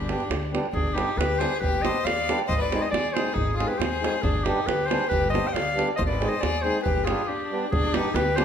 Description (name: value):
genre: balkan folk, Balkan wedding band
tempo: 137 BPM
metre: 2/4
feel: straight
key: G phrygian dominant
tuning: A4 = 441 Hz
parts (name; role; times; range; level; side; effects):
- clear clarinet; melody; 0.0-8.4 s; G4 to G5; -27 LUFS; equal; none
- clear violin; second line; 0.0-8.4 s; D4 to Eb5; -30 LUFS; left 5 dB; none
- upright bass; bass; 0.0-8.4 s; G1 to Eb2; -31 LUFS; left 1 dB; none
- mellow accordion; accompaniment; 0.1-8.4 s; G3 to Ab4; -30 LUFS; right 2 dB; none
- davul; percussion; 0.1-8.4 s; none; -28 LUFS; right 3 dB; none
room: moderate recital hall reverb, RT60 1.5 s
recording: none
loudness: -22 LUFS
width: side -8 dB against mid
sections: 0.7-7.7 A section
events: break 7.3-7.7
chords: 0.0 G; 2.5 Ab; 4.2 G; 6.0 Ab; 6.9 G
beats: 0.30 | 0.74 1.18 | 1.62 2.06 | 2.49 2.93 | 3.37 3.81 | 4.24 4.68 | 5.12 5.55 | 5.99 6.43 | 6.86 7.30 | 7.73 8.16